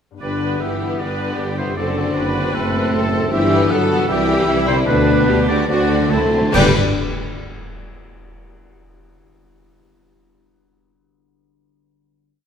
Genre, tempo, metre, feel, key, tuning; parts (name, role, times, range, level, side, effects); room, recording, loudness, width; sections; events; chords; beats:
classical, dramatic, fast romantic movement for symphony orchestra; 137-157 BPM; 4/4; rubato; G major; A4 = 440 Hz
concert harp; arpeggios; 0.1-6.8 s; F#2 to D5; -26 LUFS; left 10 dB
warm oboe; second line; 0.2-6.7 s; A4 to A5; -25 LUFS; right 2 dB
warm symphonic violin section; second line; 0.2-6.8 s; C4 to D5; -27 LUFS; left 4 dB
clear symphonic viola section; accompaniment; 0.2-6.8 s; D4 to B4; -24 LUFS; right 1 dB
mellow French horn section; sustained chords; 0.2-6.7 s; G3 to A4; -24 LUFS; left 3 dB
clear symphonic cello section; bass; 0.2-6.8 s; A2 to A3; -24 LUFS; right 2 dB
mellow tuba; bass; 0.2-6.7 s; F#1 to D2; -23 LUFS; right 4 dB
rich symphonic double bass section; bass; 0.2-6.8 s; F#1 to D2; -25 LUFS; right 3 dB
rich chamber violin section; melody; 0.4-6.8 s; G3 to B4; -26 LUFS; left 4 dB
cymbal swell, clash cymbals and concert bass drum; percussion; 3.3-7.3 s; -25 LUFS; left 1 dB
timpani; percussion; 5.7-6.7 s; G2 to D3; -26 LUFS; right 1 dB
moderate scoring stage reverb, RT60 1.8 s; -15 LUFS; side -7 dB against mid
0.2-6.5 A section; 6.5-8.2 final chord
slowing down 2.5-6.5; timpani fill 5.7-6.5; band accent 6.5-7.0
0.2 G; 1.8 D7/F#; 3.3 G; 4.1 C; 4.9 G/D; 5.7 D9; 6.5 G
| 0.21 0.61 1.00 1.39 | 1.77 2.16 2.55 2.93 | 3.32 3.71 4.09 4.48 | 4.88 5.28 5.69 6.11 | 6.54 6.96